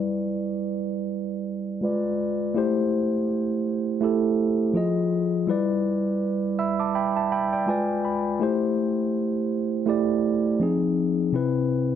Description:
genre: R&B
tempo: 82 BPM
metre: 4/4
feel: swing 58% on 16ths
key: A minor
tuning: A4 = 443 Hz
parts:
  - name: mellow tine electric piano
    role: solo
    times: 0.0-12.0 s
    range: C3 to E6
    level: -22 LUFS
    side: moving between left 5 dB and right 7 dB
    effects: auto-pan
room: light reverb, digital ambience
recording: dark, warm production, low-pass filter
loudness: -22 LUFS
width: side -9 dB against mid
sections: 0.0-2.6 A section; 2.6-12.0 B section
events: filter sweep 0.0-2.6; tine electric piano fill 6.2-8.4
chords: 0.0 Em7/G; 1.8 G#dim7; 2.6 Am7; 4.8 Fm7; 5.5 Em7/G; 7.7 G#dim7; 8.4 Am7; 10.6 Fm7; 11.3 Cmaj7

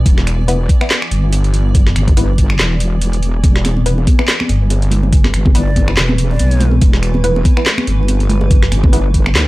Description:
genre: deep dubstep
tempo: 142 BPM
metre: 4/4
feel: swing 56% on 16ths, half-time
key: E minor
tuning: A4 = 439 Hz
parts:
  - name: granular cloud pad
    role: sustained chords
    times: 0.0-9.5 s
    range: E3 to D5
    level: -26 LUFS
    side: right 1 dB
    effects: built-in reverb
  - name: filtered dub chord stab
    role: stabs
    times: 0.0-9.1 s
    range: B3 to B4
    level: -23 LUFS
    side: left 1 dB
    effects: phaser, wide subtle chorus, dub echo
  - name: wobble bass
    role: bass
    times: 0.0-9.5 s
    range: E1 to D2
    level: -14 LUFS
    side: equal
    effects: chorus, tube saturation
  - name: electronic kick drum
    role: drums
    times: 0.1-9.2 s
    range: none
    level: -11 LUFS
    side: equal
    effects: overdrive, studio ambience
  - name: garage drum kit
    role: drums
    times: 0.1-9.4 s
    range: finger snaps, handclaps, hi-hat, snare drum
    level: -18 LUFS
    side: equal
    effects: overdrive, studio ambience
  - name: congas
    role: percussion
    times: 3.4-9.3 s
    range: none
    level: -21 LUFS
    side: equal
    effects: dub echo
  - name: breathy mellow shakuhachi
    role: melody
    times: 5.5-6.7 s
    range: D5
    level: -30 LUFS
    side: equal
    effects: dub echo
room: digital ambience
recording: dry, gritty hardware recording, transformer saturation, vinyl crackle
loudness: -11 LUFS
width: side -19 dB against mid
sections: 0.0-9.5 A section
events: none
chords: 0.0 E5

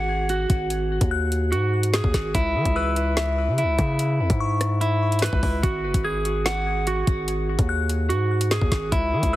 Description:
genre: hip hop, drill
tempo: 146 BPM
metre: 4/4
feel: half-time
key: unclear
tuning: A4 = 440 Hz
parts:
  - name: delicate synth tine bell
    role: second line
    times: 0.0-9.4 s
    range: C#6 to G#6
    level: -33 LUFS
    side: left 5 dB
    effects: chorus, phaser, ping-pong delay
  - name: clean electric guitar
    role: arpeggios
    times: 0.0-9.4 s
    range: E4 to F#5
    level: -25 LUFS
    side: right 1 dB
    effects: ping-pong delay
  - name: distorted 808-style bass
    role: bass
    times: 0.0-9.4 s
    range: F#1 to E3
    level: -24 LUFS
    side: equal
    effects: distortion
  - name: drill drum kit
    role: drums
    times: 0.3-9.3 s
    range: hi-hat, kick drum, rim click, snare drum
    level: -24 LUFS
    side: equal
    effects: none
room: digital ambience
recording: heavily compressed radio sound, multiband compression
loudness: -20 LUFS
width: side -15 dB against mid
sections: 0.0-9.4 A section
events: none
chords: 0.0 G#5; 2.3 C#m7; 5.6 G#5

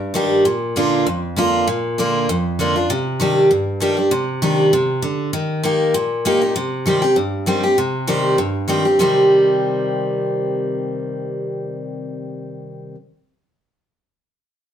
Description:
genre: bluegrass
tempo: 197 BPM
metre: 4/4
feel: swing 54% on 8ths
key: C minor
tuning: A4 = 440 Hz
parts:
  - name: picked steel-string acoustic guitar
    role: solo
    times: 0.0-13.0 s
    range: F2 to G4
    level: -16 LUFS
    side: equal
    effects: none
room: wet studio reverb, RT60 0.8 s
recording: heard from further back in the room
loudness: -16 LUFS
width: side -9 dB against mid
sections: 0.0-7.8 A section; 7.8-9.0 B section; 9.0-11.4 C section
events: none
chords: 0.5 Bb; 2.9 Cmadd9; 5.3 Eb; 6.6 Cm

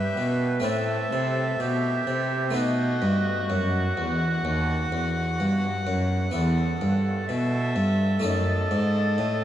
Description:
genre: classical, baroque-style sonata movement with continuo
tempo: 63 BPM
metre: 4/4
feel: straight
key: E minor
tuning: A4 = 440 Hz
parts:
  - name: warm violin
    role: melody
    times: 0.0-9.4 s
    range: D#5 to F#5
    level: -32 LUFS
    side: left 3 dB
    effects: none
  - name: warm oboe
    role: second line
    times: 0.0-9.4 s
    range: F#4 to B4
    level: -30 LUFS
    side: right 3 dB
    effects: none
  - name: harpsichord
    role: accompaniment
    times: 0.0-9.4 s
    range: D#2 to A4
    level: -28 LUFS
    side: left 1 dB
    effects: none
  - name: rich cello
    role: bass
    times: 0.0-9.4 s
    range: D#2 to C3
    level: -26 LUFS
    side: right 1 dB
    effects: none
room: moderate huge ambient reverb, RT60 7.9 s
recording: in a vast, echoing space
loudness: -22 LUFS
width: side -11 dB against mid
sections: 0.0-9.4 A section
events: none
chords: 0.0 Em; 0.6 Am; 2.5 B7; 6.3 Em; 8.2 D#dim/F#

